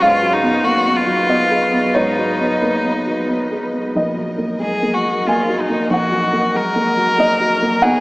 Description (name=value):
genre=neoclassical piano and strings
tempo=92 BPM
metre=3/4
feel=uneven beats, rubato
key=unclear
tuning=A4 = 440 Hz
part: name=warm violin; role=melody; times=0.0-8.0 s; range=D#4 to A#4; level=-18 LUFS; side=left 1 dB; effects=none
part: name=dark upright piano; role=accompaniment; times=0.0-8.0 s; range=A#1 to G#5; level=-17 LUFS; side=equal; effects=none
part: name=dark symphonic string section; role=sustained chords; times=0.0-8.0 s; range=F#3 to D#5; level=-25 LUFS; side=equal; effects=none
room=wet cathedral reverb, RT60 6.8 s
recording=in a vast, echoing space, small speaker sound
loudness=-14 LUFS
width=side -23 dB against mid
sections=0.0-8.0 A section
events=none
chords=0.0 G#m7; 4.0 D#m/A#